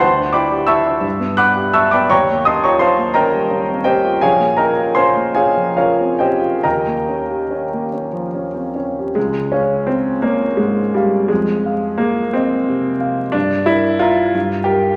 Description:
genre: classical, impressionist solo piano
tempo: 44-62 BPM (dotted quarters)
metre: 6/8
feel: rubato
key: Db lydian from 4.2 s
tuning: A4 = 440 Hz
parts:
  - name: clear grand piano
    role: solo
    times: 0.0-15.0 s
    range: Bb1 to F#6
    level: -16 LUFS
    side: equal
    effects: none
room: wet scoring stage reverb, RT60 1.6 s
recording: vinyl crackle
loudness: -16 LUFS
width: mono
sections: 0.0-9.2 A section; 9.2-15.0 B section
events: none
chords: 0.0 D11; 1.0 G69; 2.1 Eb9; 4.2 Bbm7; 6.6 Eb9; 9.2 Db; 11.3 Fm7; 13.3 Gm6; 14.3 Bb5/G

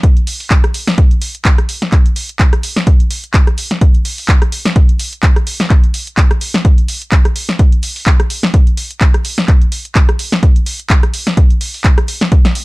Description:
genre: house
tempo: 127 BPM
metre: 4/4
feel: swing 56% on 16ths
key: none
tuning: none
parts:
  - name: electronic kick drum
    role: drums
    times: 0.0-12.4 s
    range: none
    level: -9 LUFS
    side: equal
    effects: small room ambience
  - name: punchy analog drum machine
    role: drums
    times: 0.0-12.6 s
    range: handclaps, hi-hat, rim click, snare drum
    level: -17 LUFS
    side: equal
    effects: small room ambience
room: little or no reverb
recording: none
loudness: -10 LUFS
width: side -22 dB against mid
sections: 0.0-12.6 A section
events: none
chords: none

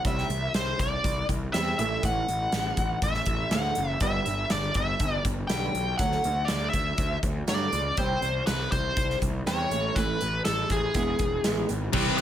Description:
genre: quiet-loud alternative rock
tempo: 121 BPM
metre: 4/4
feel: straight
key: unclear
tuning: A4 = 439 Hz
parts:
  - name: fingerpicked old ladder-braced acoustic guitar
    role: arpeggios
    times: 0.0-11.9 s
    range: G2 to C4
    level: -34 LUFS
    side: right 3 dB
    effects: slapback echo
  - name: fuzz picked electric bass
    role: bass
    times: 0.0-12.1 s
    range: E1 to G2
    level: -31 LUFS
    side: equal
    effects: overdrive
  - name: big rock drum kit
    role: drums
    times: 0.0-12.2 s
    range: crash cymbal, hi-hat, kick drum, snare drum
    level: -30 LUFS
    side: equal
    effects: none
  - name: nasal lead guitar with a parked wah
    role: melody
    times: 0.1-12.2 s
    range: G#4 to G5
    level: -28 LUFS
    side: left 1 dB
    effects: overdrive, slapback echo
  - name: string machine, violins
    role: sustained chords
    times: 11.9-12.2 s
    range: none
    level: barely audible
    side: none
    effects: none
  - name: crunchy overdriven guitar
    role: riff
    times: 11.9-12.2 s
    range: C3 to E4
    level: -27 LUFS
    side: right 9 dB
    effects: none
  - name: fuzz guitar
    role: riff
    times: 11.9-12.2 s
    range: C3 to C4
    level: -27 LUFS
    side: left 12 dB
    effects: distortion
  - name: scooped high-gain guitar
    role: riff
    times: 11.9-12.2 s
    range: C3 to C4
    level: -28 LUFS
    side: equal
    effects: distortion
room: light reverb, small room reverb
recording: none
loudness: -24 LUFS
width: side -10 dB against mid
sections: 0.0-11.9 A section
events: none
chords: 0.0 C; 1.8 A5; 4.0 G; 6.0 D; 8.0 C5; 9.7 A5; 11.0 E

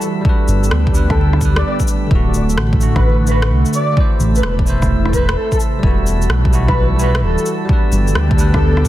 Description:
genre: future garage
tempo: 129 BPM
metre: 4/4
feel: swing 66% on 16ths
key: unclear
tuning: A4 = 440 Hz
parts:
  - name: breathy flute-like synth lead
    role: melody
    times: 0.0-8.8 s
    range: A4 to D5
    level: -23 LUFS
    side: left 1 dB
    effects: ensemble chorus, cassette tape, ping-pong delay
  - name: bell-like tine electric piano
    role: accompaniment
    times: 0.0-8.9 s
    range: D3 to C5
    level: -22 LUFS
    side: right 2 dB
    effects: medium stereo tremolo, sidechain pumping, ping-pong delay
  - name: airy breathy pad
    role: sustained chords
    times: 0.0-8.9 s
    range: C3 to G4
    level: -25 LUFS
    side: equal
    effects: chorus, phaser, sidechain pumping
  - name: electronic shaker and rim click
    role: drums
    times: 0.0-8.9 s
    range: none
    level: -24 LUFS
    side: equal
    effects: soft clipping on snare
  - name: drifting glass-harmonics texture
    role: texture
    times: 0.0-8.9 s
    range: A3 to A4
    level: -29 LUFS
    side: equal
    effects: chorus, built-in reverb
  - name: electronic kick drum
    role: drums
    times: 0.2-8.9 s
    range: none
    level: -16 LUFS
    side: equal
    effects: none
  - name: dark detuned saw bass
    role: bass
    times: 0.5-8.9 s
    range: D1 to D2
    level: -15 LUFS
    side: equal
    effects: sidechain pumping
room: little or no reverb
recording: dense, heavily limited modern master, vinyl crackle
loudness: -12 LUFS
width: side -14 dB against mid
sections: 0.0-8.9 A section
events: none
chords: 0.2 G; 2.1 D; 4.0 Am; 5.8 Emadd9; 7.7 G

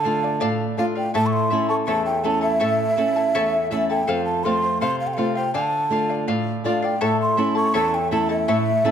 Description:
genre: andean folk, Andean ensemble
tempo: 82 BPM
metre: 2/4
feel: straight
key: unclear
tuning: A4 = 440 Hz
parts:
  - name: breathy mellow large quena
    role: melody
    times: 0.0-8.9 s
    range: E5 to C#6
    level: -22 LUFS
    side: right 2 dB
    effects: none
  - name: charango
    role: accompaniment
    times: 0.0-8.9 s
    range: E4 to A5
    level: -24 LUFS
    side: left 4 dB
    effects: none
  - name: flamenco guitar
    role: accompaniment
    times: 0.0-8.9 s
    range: E2 to F4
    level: -24 LUFS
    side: right 2 dB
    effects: none
room: moderate scoring stage reverb, RT60 1.9 s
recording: close, detailed microphones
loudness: -19 LUFS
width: side -8 dB against mid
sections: 0.0-7.0 A section; 7.0-8.9 A section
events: none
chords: 0.0 Dm; 1.1 A; 4.1 F; 5.5 Dm; 7.0 A

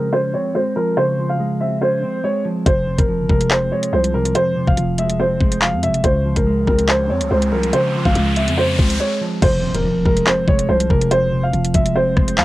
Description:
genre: hip hop, drill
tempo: 142 BPM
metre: 4/4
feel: half-time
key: F harmonic minor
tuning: A4 = 439 Hz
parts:
  - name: dark upright piano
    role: melody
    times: 0.0-12.4 s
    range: Bb4 to F5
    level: -19 LUFS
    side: equal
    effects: low-pass filter, cassette tape
  - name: mellow electric guitar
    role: accompaniment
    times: 0.0-12.4 s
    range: F2 to Db4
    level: -21 LUFS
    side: right 1 dB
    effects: wide subtle chorus, low-pass filter, cassette tape
  - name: growling 808-style bass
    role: bass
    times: 2.7-12.4 s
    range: F1 to F2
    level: -22 LUFS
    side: equal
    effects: none
  - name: drill drum kit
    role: drums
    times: 2.7-12.4 s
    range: crash cymbal, handclaps, hi-hat, kick drum, rim click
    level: -18 LUFS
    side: equal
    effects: cassette tape
  - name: riser and impact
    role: sound effects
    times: 7.0-11.1 s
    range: none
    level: -26 LUFS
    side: equal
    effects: none
room: moderate booth ambience, RT60 0.2 s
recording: home recording on cassette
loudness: -15 LUFS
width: side -17 dB against mid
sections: 0.0-9.4 A section; 9.4-12.4 B section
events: filter sweep 0.0-2.7; riser 7.0-9.4; break 9.0-9.4; impact 9.4-11.1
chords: 0.0 Dbmaj7; 2.7 Fm; 6.0 Dbmaj7; 9.4 Fm

